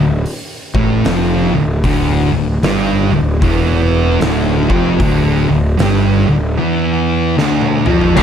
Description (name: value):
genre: stoner and doom metal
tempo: 76 BPM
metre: 4/4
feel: swing 62% on 8ths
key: D minor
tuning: A4 = 440 Hz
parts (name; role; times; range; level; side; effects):
- thick fuzz guitar; riff; 0.0-8.2 s; D2 to A3; -17 LUFS; left 7 dB; distortion
- thick fuzz guitar; riff; 0.0-8.2 s; D2 to A3; -16 LUFS; right 8 dB; distortion
- fuzz picked electric bass; bass; 0.0-8.2 s; D1 to A1; -17 LUFS; equal; overdrive, tube saturation
- oversized low-tuned drum kit; drums; 0.3-8.2 s; crash cymbal, hi-hat, kick drum, snare drum, toms; -20 LUFS; equal; none
- distorted electric guitar; riff; 8.2 s; D2 to D3; -10 LUFS; equal; overdrive
room: moderate large studio reverb, RT60 0.9 s, small room ambience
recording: dark, warm production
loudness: -12 LUFS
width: side -8 dB against mid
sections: 0.0-8.2 A section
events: drum fill 7.4-8.2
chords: 0.0 Dm